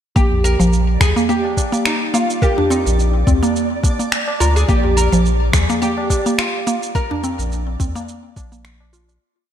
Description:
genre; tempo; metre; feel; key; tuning
organic downtempo; 106 BPM; 4/4; swing 55% on 16ths; unclear; A4 = 440 Hz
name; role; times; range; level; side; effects
oud; melody; 0.2-8.9 s; Eb4 to Bb4; -22 LUFS; equal; ping-pong delay
mallet-like synth pluck; arpeggios; 0.2-9.1 s; F3 to Bb4; -20 LUFS; right 1 dB; chorus, cassette tape, ping-pong delay
round analog bass; bass; 0.2-9.2 s; Bb1 to Eb2; -17 LUFS; equal; sidechain pumping
electronic kick drum; drums; 0.2-8.5 s; none; -17 LUFS; equal; none
electronic shaker and finger snaps; drums; 0.2-9.2 s; none; -23 LUFS; right 1 dB; gated reverb
twinkling granular texture; texture; 0.5-9.2 s; D5; -30 LUFS; right 3 dB; built-in reverb, lush chorus
tabla; percussion; 0.3-9.2 s; none; -27 LUFS; left 2 dB; none
room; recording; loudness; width
light reverb, digital ambience; bright 1980s-style digital production; -14 LUFS; side -10 dB against mid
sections
0.2-9.2 groove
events
fade-out 6.2-9.2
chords
0.2 Ebmaj7/Bb (rootless); 4.7 N.C.

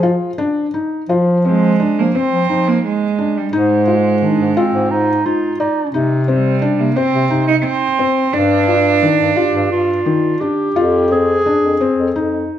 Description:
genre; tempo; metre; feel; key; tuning
contemporary instrumental, chamber music in an uneven meter; 174 BPM (eighths); 7/8; straight; F dorian; A4 = 442 Hz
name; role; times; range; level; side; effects
felt-muted upright piano; arpeggios; 0.0-12.6 s; Eb3 to D5; -18 LUFS; left 4 dB; none
warm bass clarinet; bass; 0.0-12.5 s; F2 to F3; -17 LUFS; left 1 dB; none
rich cello; melody; 1.5-10.4 s; G3 to Eb4; -17 LUFS; right 7 dB; none
mellow clarinet; second line; 4.2-12.5 s; C4 to Ab4; -18 LUFS; right 1 dB; none
room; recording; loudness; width
moderate recital hall reverb, RT60 1.5 s; none; -13 LUFS; side -10 dB against mid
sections
0.0-1.1 A section; 1.1-12.6 B section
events
none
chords
0.0 N.C.; 1.1 F5; 3.5 Ab5; 5.9 Cm; 8.3 G5; 10.8 Fm

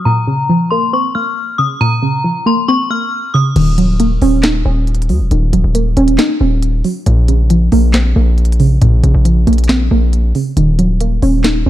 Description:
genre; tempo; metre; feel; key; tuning
hip hop, trap; 137 BPM; 4/4; half-time; Bb minor; A4 = 437 Hz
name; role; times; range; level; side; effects
metallic FM bell; melody; 0.0-3.5 s; Bb5 to F6; -16 LUFS; left 3 dB; chorus, phaser, low-pass filter
warbly dusty pluck; accompaniment; 0.0-11.7 s; Bb2 to Eb4; -14 LUFS; right 1 dB; chorus, low-pass filter
hard-hitting 808-style bass; bass; 3.6-11.7 s; Eb1 to Eb2; -12 LUFS; equal; none
trap drum kit; drums; 3.6-11.5 s; crash cymbal, handclaps, hi-hat, snare drum; -20 LUFS; equal; overdrive
room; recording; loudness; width
light reverb, digital ambience; dark, warm production; -10 LUFS; side -13 dB against mid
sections
0.0-3.6 A section; 3.6-11.7 B section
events
filter sweep 0.0-3.6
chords
0.1 Bbmadd9; 3.6 Ebm7; 7.1 Bbmadd9; 10.6 Ebm7

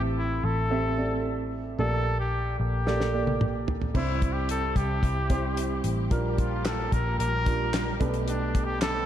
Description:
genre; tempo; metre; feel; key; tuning
piano-driven pop; 111 BPM; 4/4; straight; unclear; A4 = 442 Hz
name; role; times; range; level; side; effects
clear trumpet; melody; 0.0-9.1 s; D4 to Bb4; -31 LUFS; left 1 dB; slapback echo
warm baby grand piano; accompaniment; 0.0-9.1 s; G2 to E5; -31 LUFS; right 3 dB; slapback echo
vintage muted picked electric bass; bass; 0.0-9.0 s; A1 to C2; -29 LUFS; left 1 dB; none
damped 70s drum kit; drums; 2.9-8.9 s; crash cymbal, handclaps, hi-hat, kick drum, snare drum, toms; -28 LUFS; equal; none
warm studio string section; sustained chords; 3.9-9.1 s; D3 to G4; -39 LUFS; left 2 dB; none
room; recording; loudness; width
moderate lush hall reverb, RT60 1.6 s, small room ambience; big arena sound; -24 LUFS; side -10 dB against mid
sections
0.0-4.0 A section; 4.0-9.1 B section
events
drum fill 2.9-4.0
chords
0.0 Am7; 1.8 Gmadd9/Bb; 4.0 C; 6.1 Bb6; 8.0 Gadd9/B

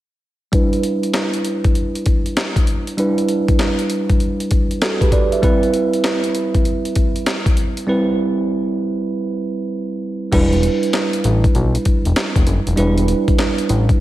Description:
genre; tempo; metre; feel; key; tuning
R&B, new jack swing; 98 BPM; 4/4; swing 65% on 16ths; E minor; A4 = 440 Hz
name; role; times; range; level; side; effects
bell-like tine electric piano; accompaniment; 0.5-14.0 s; G3 to E5; -19 LUFS; right 2 dB; low-pass filter, slapback echo
breakbeat sampler-style drum kit; drums; 0.5-14.0 s; crash cymbal, handclaps, hi-hat, kick drum, snare drum; -17 LUFS; left 1 dB; none
fat analog bass; bass; 10.3-13.9 s; E1 to B1; -16 LUFS; left 1 dB; none
room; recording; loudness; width
moderate lush hall reverb, RT60 1.9 s, digital ambience; big arena sound; -15 LUFS; side -15 dB against mid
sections
0.5-10.3 A section; 10.3-14.0 B section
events
filter sweep on tine electric piano 0.5-10.3; break 7.9-10.3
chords
0.5 Em7; 5.4 Cmaj7; 10.3 Em7

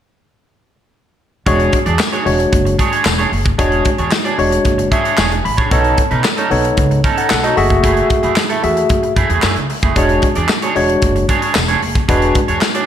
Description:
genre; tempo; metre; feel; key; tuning
early-eighties boogie funk; 113 BPM; 4/4; straight; unclear; A4 = 441 Hz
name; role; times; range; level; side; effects
barky tine electric piano; accompaniment; 1.5-12.8 s; G#3 to B5; -16 LUFS; left 1 dB; overdrive, auto-pan, slapback echo
electric guitar at the edge of break-up; riff; 1.5-12.9 s; A3 to D5; -19 LUFS; right 4 dB; analog chorus, slapback echo
upright bass; bass; 1.5-12.6 s; E1 to B2; -19 LUFS; equal; none
modern studio drum kit; drums; 1.5-12.9 s; handclaps, hi-hat, kick drum, snare drum; -17 LUFS; equal; none
tambourine; percussion; 2.0-12.7 s; none; -27 LUFS; left 10 dB; none
room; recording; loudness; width
moderate recital hall reverb, RT60 1.3 s, small room ambience; big arena sound; -12 LUFS; side -10 dB against mid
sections
1.5-12.9 A section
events
tine electric piano fill 4.7-5.7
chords
1.5 E13; 5.7 B9; 7.6 F#m9; 10.0 E13

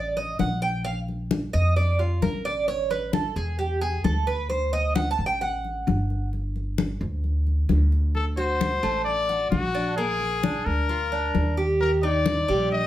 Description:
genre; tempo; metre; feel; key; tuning
latin, Cuban son and guajira; 132 BPM; 4/4; straight; unclear; A4 = 440 Hz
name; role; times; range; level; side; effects
Cuban tres; arpeggios; 0.0-12.9 s; G3 to A5; -27 LUFS; right 3 dB; none
upright bass; bass; 0.0-12.9 s; G1 to F2; -26 LUFS; equal; none
congas; percussion; 0.2-12.9 s; none; -28 LUFS; left 4 dB; none
bright trumpet; melody; 8.1-12.9 s; F#4 to Eb5; -26 LUFS; left 4 dB; none
room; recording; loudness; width
wet studio reverb, RT60 0.6 s; heard from further back in the room; -22 LUFS; side -13 dB against mid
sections
0.0-8.2 A section; 8.2-12.9 B section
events
Cuban tres solo 0.0-8.2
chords
0.0 D5; 0.9 Bb5; 2.7 A5; 4.5 D; 6.3 G5; 8.2 D; 10.0 Bb7; 11.8 Eb

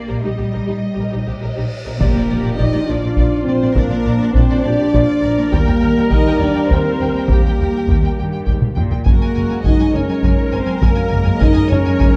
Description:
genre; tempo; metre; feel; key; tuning
cinematic, epic orchestral film score; 68 BPM (dotted quarters); 6/8; straight; Bb mixolydian; A4 = 440 Hz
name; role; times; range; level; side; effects
warm symphonic violin section; melody; 0.0-12.1 s; D5 to Ab5; -34 LUFS; equal; none
mellow French horn section; sustained chords; 0.0-12.2 s; Bb3 to Eb5; -21 LUFS; equal; none
rich symphonic cello section; bass; 0.0-12.1 s; Eb2 to Bb3; -26 LUFS; equal; none
rich studio violin section; second line; 0.1-12.2 s; Eb4 to Eb5; -30 LUFS; equal; none
clear symphonic viola section; accompaniment; 0.1-12.2 s; D4 to Bb4; -28 LUFS; equal; none
warm symphonic double bass section; bass; 0.1-12.1 s; Gb1 to Eb2; -24 LUFS; equal; none
cymbal swell and impact; sound effects; 1.2-3.8 s; none; -29 LUFS; equal; none
dark trombone section; sustained chords; 2.0-12.2 s; F3 to D4; -29 LUFS; equal; none
taiko ensemble; drums; 2.0-12.2 s; none; -20 LUFS; equal; none
room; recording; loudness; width
moderate concert hall reverb, RT60 1.8 s; dark, warm production; -16 LUFS; mono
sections
0.0-2.0 A section; 2.0-12.2 B section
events
cymbal swell 1.3-2.0; impact 2.0-3.8; drum fill 8.6-9.1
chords
0.2 Eb/Bb; 2.0 Bb; 5.5 Eb; 9.1 Gbadd9

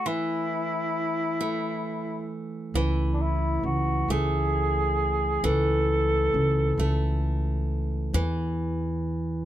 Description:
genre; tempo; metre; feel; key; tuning
acoustic folk-pop ballad; 44 BPM (dotted quarters); 6/8; straight; unclear; A4 = 440 Hz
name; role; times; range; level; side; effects
dark cor anglais; melody; 0.0-7.2 s; D4 to A4; -26 LUFS; left 1 dB; none
picked steel-string acoustic guitar; arpeggios; 0.0-9.5 s; E3 to A3; -31 LUFS; right 4 dB; none
upright bass; bass; 2.7-9.5 s; C#2 to E2; -26 LUFS; equal; none
room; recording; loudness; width
little or no reverb; close, detailed microphones; -24 LUFS; side -12 dB against mid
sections
0.0-8.1 A section; 8.1-9.5 B section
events
none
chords
0.1 Dmaj7sus2 (rootless); 8.1 E5

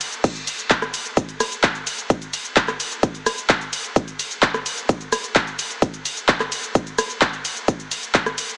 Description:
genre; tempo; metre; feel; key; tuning
EDM; 129 BPM; 4/4; straight; none; none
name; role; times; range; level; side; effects
big-room dance drum kit; drums; 0.0-8.6 s; crash cymbal, handclaps, hi-hat, ride cymbal, rim click, shaker; -24 LUFS; equal; none
electronic kick drum; drums; 0.2-8.2 s; none; -22 LUFS; equal; none
room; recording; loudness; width
light reverb, digital ambience; heavily compressed radio sound, small speaker sound; -22 LUFS; mono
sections
0.0-8.6 A section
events
none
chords
none

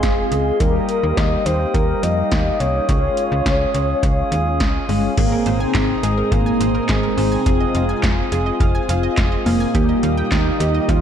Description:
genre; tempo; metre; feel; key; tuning
synth-pop; 105 BPM; 4/4; straight; Ab major; A4 = 440 Hz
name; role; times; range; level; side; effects
wide unison lead; melody; 0.0-11.0 s; Ab3 to Eb5; -21 LUFS; equal; analog delay, shimmer reverb
mellow synth brass; accompaniment; 0.0-11.0 s; G3 to Ab4; -25 LUFS; left 2 dB; chorus, shimmer reverb
glass harmonica; sustained chords; 0.0-11.0 s; F4 to Eb6; -26 LUFS; equal; shimmer reverb
slap-like FM bass; bass; 0.0-11.0 s; F1 to F2; -21 LUFS; equal; none
electro analog drum machine; drums; 0.0-11.0 s; crash cymbal, handclaps, hi-hat, kick drum, snare drum; -21 LUFS; equal; none
analog pluck; arpeggios; 5.2-11.0 s; G4 to Ab5; -28 LUFS; right 4 dB; chorus, analog delay, shimmer reverb
room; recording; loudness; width
moderate lush hall reverb, RT60 1.7 s, digital ambience; dreamy mix soaked in reverb; -16 LUFS; side -8 dB against mid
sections
0.0-5.2 A section; 5.2-11.0 B section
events
none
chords
0.0 Fm7; 0.6 Ebadd9; 2.9 Dbadd9; 5.2 Abadd9; 7.5 Fm7; 9.7 Ebadd9

